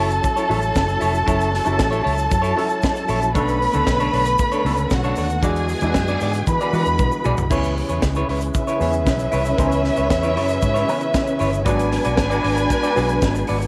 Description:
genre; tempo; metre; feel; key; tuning
disco; 116 BPM; 4/4; straight; unclear; A4 = 439 Hz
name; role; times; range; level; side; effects
warm studio violin section; second line; 0.0-13.7 s; C#4 to B5; -24 LUFS; equal; none
semi-hollow electric guitar; accompaniment; 0.0-13.6 s; D4 to D5; -29 LUFS; equal; none
warm baby grand piano; accompaniment; 0.0-13.7 s; C#3 to B4; -30 LUFS; equal; none
percussive tonewheel organ; sustained chords; 0.0-13.7 s; C#3 to C#5; -30 LUFS; equal; chorus vibrato, fast rotary speaker
fingered electric bass; bass; 0.0-13.7 s; E#1 to E3; -26 LUFS; equal; none
tight funk drum kit; drums; 0.1-13.7 s; crash cymbal, hi-hat, kick drum, snare drum, toms; -26 LUFS; equal; none
tube shaker; percussion; 0.1-13.7 s; none; -45 LUFS; equal; none
room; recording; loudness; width
wet spring reverb, RT60 1.4 s, small room ambience; none; -20 LUFS; mono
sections
0.0-7.5 A section; 7.5-13.7 B section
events
drum fill 7.0-7.5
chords
0.0 F#m7; 3.4 Bm9; 5.4 E9; 7.5 C#m7; 11.7 G#m7b5

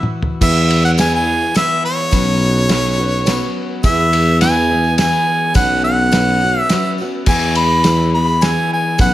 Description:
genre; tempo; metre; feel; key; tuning
folk rock and heartland rock; 105 BPM; 3/4; straight; E major; A4 = 440 Hz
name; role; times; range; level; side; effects
clear harmonica; melody; 0.0-9.1 s; C#5 to B5; -16 LUFS; equal; slapback echo
picked steel-string acoustic guitar; accompaniment; 0.0-9.1 s; B2 to G#4; -21 LUFS; left 4 dB; none
cloth-damped thuddy drum kit; drums; 0.0-9.1 s; crash cymbal, kick drum, ride cymbal, snare drum, toms; -19 LUFS; equal; none
warm upright piano; accompaniment; 0.4-9.1 s; C#4 to B4; -26 LUFS; right 11 dB; none
mellow tuba; bass; 0.4-9.1 s; B1 to E2; -17 LUFS; equal; none
tambourine; percussion; 0.4-9.1 s; none; -32 LUFS; left 6 dB; none
room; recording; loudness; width
studio ambience; none; -12 LUFS; side -14 dB against mid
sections
0.4-9.1 A section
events
drum fill 0.0-0.4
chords
0.4 E; 2.1 Bsus2; 3.8 E; 5.6 Bsus2; 7.3 E

